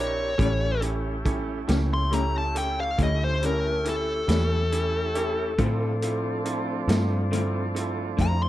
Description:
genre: slow blues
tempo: 46 BPM (dotted quarters)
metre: 12/8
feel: straight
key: unclear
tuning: A4 = 440 Hz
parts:
  - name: dark smooth lead guitar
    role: melody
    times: 0.0-8.5 s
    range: A4 to C6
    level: -27 LUFS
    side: left 2 dB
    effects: overdrive, plate reverb
  - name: bright upright piano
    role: accompaniment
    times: 0.0-8.5 s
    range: A3 to Bb4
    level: -32 LUFS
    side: right 3 dB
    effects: plate reverb
  - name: tonewheel organ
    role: sustained chords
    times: 0.0-8.5 s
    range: F3 to Bb4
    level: -33 LUFS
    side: right 1 dB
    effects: slow rotary speaker, plate reverb
  - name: vintage muted fingered electric bass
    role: bass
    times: 0.0-8.5 s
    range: A1 to A2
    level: -27 LUFS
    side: equal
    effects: none
  - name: electric guitar through a small old amp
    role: accompaniment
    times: 0.4-8.4 s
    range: A2 to F4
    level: -32 LUFS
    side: left 5 dB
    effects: tremolo
  - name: vintage drum kit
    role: drums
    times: 0.4-8.4 s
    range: hi-hat, kick drum, snare drum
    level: -28 LUFS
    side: equal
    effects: none
room: light reverb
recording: dark, warm production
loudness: -23 LUFS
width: side -14 dB against mid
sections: 0.0-8.5 A section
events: lead electric guitar solo 0.0-8.5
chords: 0.4 A7; 5.6 Dm7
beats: | 0.39 1.69 2.99 4.29 | 5.59 6.89 8.19

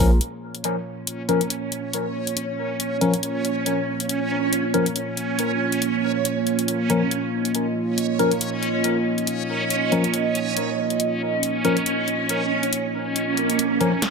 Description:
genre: deep dubstep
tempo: 139 BPM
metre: 4/4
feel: swing 56% on 16ths, half-time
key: Bb minor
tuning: A4 = 440 Hz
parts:
  - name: dark analog pad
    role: sustained chords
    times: 0.0-14.1 s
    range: Bb3 to Eb5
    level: -25 LUFS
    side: right 2 dB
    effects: chorus
  - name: tine electric piano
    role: stabs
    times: 0.0-13.9 s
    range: F3 to Bb4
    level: -24 LUFS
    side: left 3 dB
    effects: phaser, dub echo
  - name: soft dub sub bass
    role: bass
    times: 0.0-0.2, 14.0-14.1 s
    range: Bb1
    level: -19 LUFS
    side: equal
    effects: high-pass filter
  - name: deep house drum kit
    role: drums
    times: 0.2-14.1 s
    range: hi-hat, snare drum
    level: -26 LUFS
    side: left 2 dB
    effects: none
  - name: backwards swelling texture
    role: texture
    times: 1.2-14.1 s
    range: Db4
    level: -25 LUFS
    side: right 3 dB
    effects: built-in reverb
  - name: swell and riser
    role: sound effects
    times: 13.3-14.1 s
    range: none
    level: -25 LUFS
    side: right 4 dB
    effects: none
  - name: electronic kick drum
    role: drums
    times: 14.0-14.1 s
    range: none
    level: -23 LUFS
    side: equal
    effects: none
room: moderate spring reverb, RT60 1.3 s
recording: none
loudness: -20 LUFS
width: side -4 dB against mid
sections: 0.2-14.0 A section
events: swell 13.3-14.0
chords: 0.2 Bbm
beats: | 0.21 0.64 1.07 1.50 | 1.94 2.37 2.80 3.23 | 3.66 4.09 4.53 4.96 | 5.39 5.82 6.25 6.68 | 7.12 7.55 7.98 8.41 | 8.84 9.27 9.71 10.14 | 10.57 11.00 11.43 11.86 | 12.29 12.73 13.16 13.59 | 14.02

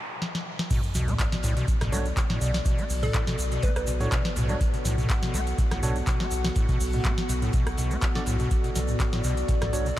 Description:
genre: acid house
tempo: 123 BPM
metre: 4/4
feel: swing 53% on 16ths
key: B minor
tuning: A4 = 441 Hz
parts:
  - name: noise sweep and sub drop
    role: sound effects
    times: 0.0-2.7 s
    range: none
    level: -37 LUFS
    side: equal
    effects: none
  - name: booming analog drum machine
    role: drums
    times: 0.2-10.0 s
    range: crash cymbal, handclaps, hi-hat, rim click, snare drum, toms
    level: -31 LUFS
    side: equal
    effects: none
  - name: dark analog pad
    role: sustained chords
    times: 0.7-10.0 s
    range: B3 to F#5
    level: -33 LUFS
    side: left 2 dB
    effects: lush chorus, sidechain pumping
  - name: acid bass, square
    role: riff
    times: 0.7-9.9 s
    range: A2 to B3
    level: -32 LUFS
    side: equal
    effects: overdrive, cassette tape, tape echo
  - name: cloth-damped thuddy drum kit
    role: drums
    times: 0.7-9.9 s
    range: hi-hat, snare drum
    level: -47 LUFS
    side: left 2 dB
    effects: none
  - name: electronic kick drum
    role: drums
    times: 0.7-9.6 s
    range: none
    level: -26 LUFS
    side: equal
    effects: none
  - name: tube shaker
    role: percussion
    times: 0.7-10.0 s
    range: none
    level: -40 LUFS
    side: right 2 dB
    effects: none
  - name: warm sub bass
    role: bass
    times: 0.9-9.9 s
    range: B1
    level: -28 LUFS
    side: equal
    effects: sidechain pumping
  - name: overdriven tine electric piano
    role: stabs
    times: 1.9-9.9 s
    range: D4 to D5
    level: -38 LUFS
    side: right 3 dB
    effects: none
  - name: hollow square pluck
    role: melody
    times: 3.0-3.8 s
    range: A4 to B4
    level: -37 LUFS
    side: right 2 dB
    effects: chorus, diffuse ambient delay
room: light reverb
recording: none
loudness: -23 LUFS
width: side -14 dB against mid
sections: 0.7-10.0 A section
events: break 0.0-0.7; noise sweep 0.0-0.7; drum fill 0.2-0.7; drop 0.7-10.0; impact 0.7-2.7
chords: 0.0 N.C.; 0.7 Bm7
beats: 0.22 | 0.71 1.19 1.68 2.17 | 2.66 3.15 3.63 4.12 | 4.61 5.10 5.58 6.07 | 6.56 7.05 7.54 8.02 | 8.51 9.00 9.49 9.97

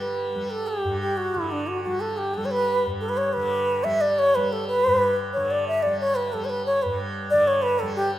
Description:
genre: indian classical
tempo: 181 BPM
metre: 4/4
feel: straight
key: G raga yaman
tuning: A4 = 440 Hz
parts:
  - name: mellow bansuri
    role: melody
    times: 0.0-8.1 s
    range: D4 to E5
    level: -22 LUFS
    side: equal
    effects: none
  - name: tanpura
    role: drone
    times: 0.0-8.2 s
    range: G2 to G3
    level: -30 LUFS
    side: equal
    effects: none
room: moderate recital hall reverb, RT60 1.7 s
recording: minimal, uncompressed stereo recording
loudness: -21 LUFS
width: side -13 dB against mid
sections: 0.0-8.2 A section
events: speeding up 0.0-8.2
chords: none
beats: 0.01 0.34 | 0.68 1.01 1.35 1.68 | 2.02 2.35 2.68 3.02 | 3.35 3.68 4.01 4.34 | 4.67 5.00 5.33 5.66 | 5.99 6.32 6.65 6.97 | 7.30 7.63 7.95

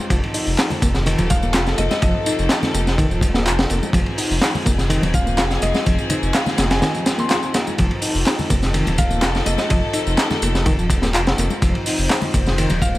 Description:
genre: breakbeat, breaks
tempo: 125 BPM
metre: 4/4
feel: straight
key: unclear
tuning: A4 = 442 Hz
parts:
  - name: dark studio string section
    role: sustained chords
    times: 0.0-13.0 s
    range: F3 to C5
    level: -26 LUFS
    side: equal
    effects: sidechain pumping
  - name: reed electric piano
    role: riff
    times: 0.1-13.0 s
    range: Eb3 to F4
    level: -25 LUFS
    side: equal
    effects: fast tremolo, digital delay
  - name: saturated sub bass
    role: bass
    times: 0.1-13.0 s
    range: Eb1 to F1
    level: -22 LUFS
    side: equal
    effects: tube saturation
  - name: crunchy breakbeat drum kit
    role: drums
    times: 0.1-12.9 s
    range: hi-hat, kick drum, ride cymbal, snare drum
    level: -20 LUFS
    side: equal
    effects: none
  - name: electronic tambourine and handclaps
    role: drums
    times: 0.1-13.0 s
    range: none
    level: -26 LUFS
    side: equal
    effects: none
  - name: congas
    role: percussion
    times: 0.7-13.0 s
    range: none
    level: -29 LUFS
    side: left 2 dB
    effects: none
  - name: mallet-like synth pluck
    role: melody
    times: 1.3-13.0 s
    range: Eb5 to C6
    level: -27 LUFS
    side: left 1 dB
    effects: chorus, telephone sound, digital delay
room: studio ambience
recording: vinyl crackle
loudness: -16 LUFS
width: side -17 dB against mid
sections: 0.0-13.0 A section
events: none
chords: 0.0 F7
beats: | 0.10 0.58 1.06 1.54 | 2.02 2.50 2.98 3.46 | 3.94 4.42 4.90 5.38 | 5.86 6.34 6.82 7.30 | 7.78 8.26 8.74 9.22 | 9.70 10.18 10.66 11.14 | 11.62 12.10 12.58

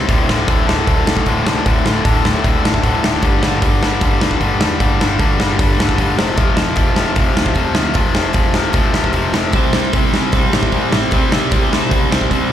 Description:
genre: punk rock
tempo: 152 BPM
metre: 4/4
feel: straight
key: unclear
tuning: A4 = 440 Hz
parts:
  - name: distorted electric guitar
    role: riff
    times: 0.0-12.5 s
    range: D2 to C4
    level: -17 LUFS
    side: left 5 dB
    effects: overdrive, slapback echo
  - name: fuzz picked electric bass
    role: bass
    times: 0.0-12.5 s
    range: D1 to E2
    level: -21 LUFS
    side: right 1 dB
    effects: overdrive
  - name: big rock drum kit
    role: drums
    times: 0.1-12.4 s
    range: hi-hat, kick drum, snare drum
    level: -16 LUFS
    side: right 1 dB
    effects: none
  - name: cranked stack guitar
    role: riff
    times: 9.5-12.5 s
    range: C3 to C4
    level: -20 LUFS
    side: right 14 dB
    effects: overdrive, slapback echo
room: small room ambience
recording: live gig heard through the venue's PA, club reverb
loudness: -13 LUFS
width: side -10 dB against mid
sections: 0.0-12.5 A section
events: none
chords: 0.1 D5; 3.2 G5; 6.2 F5; 9.5 C5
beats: | 0.09 0.48 0.87 1.27 | 1.66 2.05 2.45 2.84 | 3.23 3.63 4.02 4.42 | 4.81 5.21 5.60 5.99 | 6.39 6.78 7.18 7.57 | 7.97 8.36 8.76 9.15 | 9.55 9.94 10.34 10.73 | 11.12 11.52 11.91 12.31

